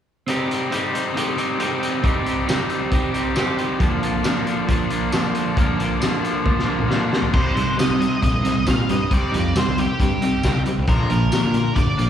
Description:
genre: indie rock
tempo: 136 BPM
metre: 4/4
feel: straight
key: C minor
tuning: A4 = 438 Hz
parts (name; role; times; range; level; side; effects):
- overdriven electric guitar; riff; 0.3-12.1 s; Bb2 to Eb4; -24 LUFS; left 6 dB; slapback echo
- sludgy distorted guitar; riff; 0.3-12.1 s; F3 to G4; -24 LUFS; right 6 dB; overdrive, lush chorus, slapback echo, analog delay
- loose indie drum kit; drums; 0.3-12.1 s; crash cymbal, hi-hat, kick drum, snare drum, tambourine, toms; -23 LUFS; equal; none
- octave-fuzz lead guitar; melody; 7.3-12.1 s; G4 to F5; -25 LUFS; equal; distortion, slapback echo, analog delay
- fuzz picked electric bass; bass; 7.3-12.1 s; G1 to C3; -22 LUFS; equal; overdrive
room: light reverb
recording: live gig heard through the venue's PA, recital hall reverb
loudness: -18 LUFS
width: side -9 dB against mid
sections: 0.3-7.3 A section; 7.3-12.1 B section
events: drum fill 6.5-7.3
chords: 0.3 Cm; 3.8 Bb; 7.3 Cm; 10.9 Bb

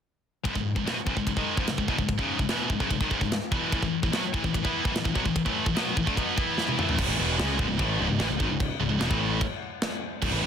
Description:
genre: heavy metal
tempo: 147 BPM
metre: 4/4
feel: straight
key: C# minor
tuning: A4 = 435 Hz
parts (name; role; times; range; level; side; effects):
- high-gain distorted guitar; riff; 0.4-10.5 s; C#2 to E4; -29 LUFS; left 9 dB; distortion
- heavy high-gain guitar; riff; 0.5-10.5 s; C#2 to E4; -29 LUFS; right 11 dB; distortion
- tight metal drum kit; drums; 0.5-10.3 s; china cymbal, crash cymbal, kick drum, ride cymbal, snare drum, toms; -29 LUFS; equal; soft clipping on kick
- fuzz picked electric bass; bass; 7.0-10.5 s; C#1 to C#2; -29 LUFS; equal; overdrive
room: studio reverb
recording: dense, heavily limited modern master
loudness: -24 LUFS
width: side -8 dB against mid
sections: 0.4-7.0 A section; 7.0-10.5 B section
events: drum fill 6.6-7.0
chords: 0.4 C#m; 3.7 A5; 6.4 E5; 6.8 A5; 7.0 C#m

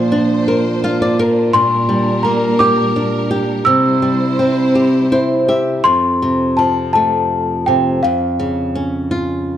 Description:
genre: children's music, lullaby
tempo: 56 BPM (dotted quarters)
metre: 6/8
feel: rubato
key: F major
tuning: A4 = 440 Hz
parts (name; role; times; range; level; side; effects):
- worn celesta; melody; 0.0-8.8 s; F5 to E6; -16 LUFS; left 1 dB; none
- flamenco guitar; accompaniment; 0.0-9.6 s; F2 to F5; -15 LUFS; equal; none
- warm studio string section; sustained chords; 0.0-5.8 s; Bb2 to C5; -20 LUFS; right 2 dB; none
room: moderate scoring stage reverb, RT60 1.5 s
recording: dark, warm production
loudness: -13 LUFS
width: side -10 dB against mid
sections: 0.0-5.8 A section; 5.8-9.6 B section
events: nylon-string guitar fill 0.5-1.5, 4.7-5.8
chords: 0.0 Bbadd9; 1.5 Gm/Bb; 3.7 C; 5.8 F; 8.0 Db/F

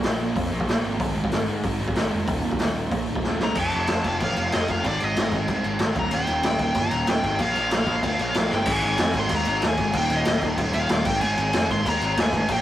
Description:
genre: punk rock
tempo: 188 BPM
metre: 4/4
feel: straight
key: unclear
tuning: A4 = 441 Hz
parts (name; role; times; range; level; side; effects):
- sludgy distorted guitar; riff; 0.0-12.6 s; Eb2 to Bb3; -29 LUFS; equal; overdrive
- fuzz picked electric bass; bass; 0.0-12.6 s; Eb1 to Ab2; -28 LUFS; equal; overdrive
- raw garage drum kit; drums; 0.0-12.6 s; crash cymbal, hi-hat, kick drum, snare drum; -24 LUFS; equal; none
- high-gain lead guitar; melody; 3.4-12.6 s; D5 to C6; -26 LUFS; left 1 dB; distortion
room: light reverb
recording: rough rehearsal-room recording, warm saturation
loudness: -21 LUFS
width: side -12 dB against mid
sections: 0.0-3.6 A section; 3.6-8.7 B section; 8.7-12.6 C section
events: drum fill 3.3-3.6, 8.5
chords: 0.0 Bb5; 1.0 Ab5; 2.3 Eb5; 3.6 F; 4.8 Ab5; 6.0 Eb; 7.4 Bb5; 8.7 Ab5; 9.9 Eb5; 11.1 Ab5

